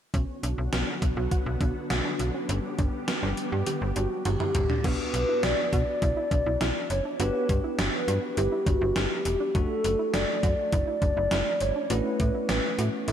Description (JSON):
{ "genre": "synth-pop", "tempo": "102 BPM", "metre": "4/4", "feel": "straight", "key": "B minor", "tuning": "A4 = 438 Hz", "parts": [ { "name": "ensemble organ-string", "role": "sustained chords", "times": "0.1-4.8 s", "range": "D3 to G4", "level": "-34 LUFS", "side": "equal", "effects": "ensemble chorus, shimmer reverb" }, { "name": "soft round pluck", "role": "arpeggios", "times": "0.1-13.1 s", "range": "B3 to G4", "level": "-36 LUFS", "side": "right 5 dB", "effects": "chorus, analog delay, shimmer reverb" }, { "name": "slap-like FM bass", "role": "bass", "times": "0.1-13.1 s", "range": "E1 to B2", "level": "-29 LUFS", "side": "equal", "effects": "none" }, { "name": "gated 80s digital drum machine", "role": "drums", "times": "0.1-13.1 s", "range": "crash cymbal, hi-hat, kick drum, snare drum, toms", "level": "-29 LUFS", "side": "equal", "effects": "gated reverb, gated reverb snare, overdrive" }, { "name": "hollow clarinet-like synth lead", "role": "melody", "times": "4.0-13.1 s", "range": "F#4 to D5", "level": "-28 LUFS", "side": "equal", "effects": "chorus, shimmer reverb" }, { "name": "bell-like tine electric piano", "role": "accompaniment", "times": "4.8-13.1 s", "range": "A3 to G4", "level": "-34 LUFS", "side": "equal", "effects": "medium stereo tremolo, shimmer reverb, slapback echo" } ], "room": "moderate lush hall reverb, RT60 2.9 s", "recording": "big arena sound", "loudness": "-24 LUFS", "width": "side -9 dB against mid", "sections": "0.1-4.8 A section; 4.8-13.1 B section", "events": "drum fill 3.7-4.8", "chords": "0.1 Bm; 2.5 G; 4.8 Bm; 7.2 G; 9.6 D/F#; 11.9 A", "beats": "| 0.14 0.73 1.31 1.90 | 2.49 3.08 3.67 4.25 | 4.84 5.43 6.02 6.61 | 7.20 7.79 8.37 8.96 | 9.55 10.14 10.73 11.31 | 11.90 12.49 13.08" }